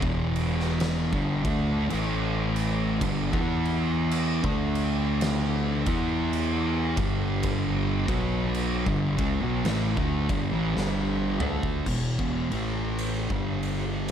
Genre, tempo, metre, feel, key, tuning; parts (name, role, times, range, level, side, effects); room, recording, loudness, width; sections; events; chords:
stoner and doom metal; 54 BPM; 4/4; swing 58% on 8ths; E minor; A4 = 435 Hz
thick fuzz guitar; riff; 0.0-14.1 s; E2 to E4; -29 LUFS; left 7 dB; distortion
thick fuzz guitar; riff; 0.0-14.1 s; E2 to E4; -29 LUFS; right 8 dB; distortion
growling picked electric bass; bass; 0.0-14.1 s; E1 to E2; -31 LUFS; equal; overdrive
oversized low-tuned drum kit; drums; 0.0-14.1 s; crash cymbal, kick drum, ride cymbal, snare drum, toms; -32 LUFS; equal
light reverb; dark, warm production; -24 LUFS; side -9 dB against mid
0.0-11.9 A section; 11.9-14.1 B section
drum fill 10.8-11.9
0.0 Em; 1.9 A5; 3.0 G5; 3.3 E5; 4.4 D5; 5.8 E5; 6.9 G5; 11.9 E5; 13.2 G5